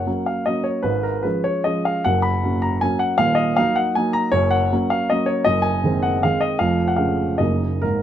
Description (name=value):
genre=classical, romantic triple-time dance for piano with dotted rhythms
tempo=133-170 BPM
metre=3/4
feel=rubato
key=F# major, Db major from 4.3 s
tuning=A4 = 440 Hz
part: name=warm baby grand piano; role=solo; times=0.0-8.0 s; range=D#1 to B5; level=-18 LUFS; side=equal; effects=none
room=light reverb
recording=close, detailed microphones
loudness=-18 LUFS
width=side -10 dB against mid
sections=0.0-8.0 A section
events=none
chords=0.0 F#; 0.9 C#/G#; 2.1 F#; 3.2 D#m; 4.3 Gb; 5.5 Ab7/Gb; 6.6 Db/F; 7.4 Ebm7/Gb